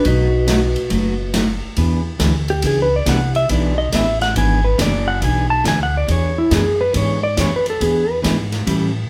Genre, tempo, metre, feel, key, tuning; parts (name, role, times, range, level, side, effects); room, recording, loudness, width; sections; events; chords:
country, western swing; 139 BPM; 4/4; swing 66% on 8ths; E mixolydian; A4 = 440 Hz
clean lap steel guitar; melody; 0.0-8.2 s; E4 to A5; -21 LUFS; equal
vibraphone with hard mallets; second line; 0.0-1.3 s; B4; -31 LUFS; equal
picked steel-string acoustic guitar; accompaniment; 0.0-8.9 s; B2 to A4; -24 LUFS; equal
upright bass; bass; 0.0-9.1 s; F#1 to A2; -22 LUFS; equal
swinging big-band drum kit; drums; 0.0-8.8 s; hi-hat, ride cymbal, snare drum; -27 LUFS; equal
moderate large studio reverb, RT60 1.1 s; band playing live in one room; -17 LUFS; mono
0.0-1.8 A section; 1.8-9.1 B section
electric slide guitar solo 1.8-9.1
0.1 B7; 1.8 E9